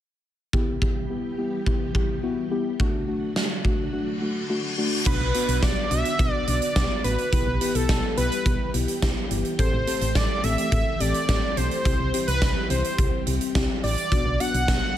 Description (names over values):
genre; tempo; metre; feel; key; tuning
synth-pop; 106 BPM; 4/4; straight; E minor; A4 = 440 Hz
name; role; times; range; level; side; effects
muted felt-like synth keys; accompaniment; 0.5-14.9 s; A3 to A4; -29 LUFS; left 3 dB; chorus
ensemble organ-string; sustained chords; 0.5-15.0 s; D3 to G4; -33 LUFS; equal; ensemble chorus
huge arena drum kit; drums; 0.5-14.8 s; crash cymbal, hi-hat, kick drum, snare drum; -25 LUFS; equal; gated reverb
reverse cymbal; sound effects; 4.2-5.1 s; none; -30 LUFS; left 3 dB; none
wide unison lead; melody; 5.1-15.0 s; A4 to F#5; -26 LUFS; right 1 dB; digital delay
solid FM bass; bass; 5.1-14.8 s; G1 to C2; -26 LUFS; equal; none
room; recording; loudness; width
light reverb, small room ambience; none; -21 LUFS; side -11 dB against mid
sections
0.5-5.1 A section; 5.1-15.0 B section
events
silent gap 3.9-5.1; reverse cymbal 4.2-5.1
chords
0.5 Em; 2.8 D; 5.1 Bm; 7.3 Em/B; 9.6 Am7; 11.9 C; 14.1 Bm